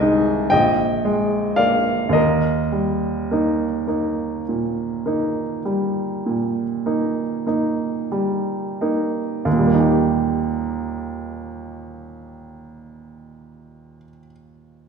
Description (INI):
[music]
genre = classical, romantic nocturne for solo piano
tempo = 29-42 BPM (dotted quarters)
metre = 12/8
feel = rubato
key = Eb major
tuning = A4 = 439 Hz
[part]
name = warm upright piano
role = solo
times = 0.0-14.9 s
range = Bb1 to Ab5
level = -19 LUFS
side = right 1 dB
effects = none
[sound]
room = wet recital hall reverb, RT60 1.6 s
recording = heard from further back in the room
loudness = -18 LUFS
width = side -6 dB against mid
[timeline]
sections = 0.0-9.5 A section; 9.5-14.9 B section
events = slowing down 0.0-9.5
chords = 0.0 Ab/C; 0.5 Bb7; 2.2 Eb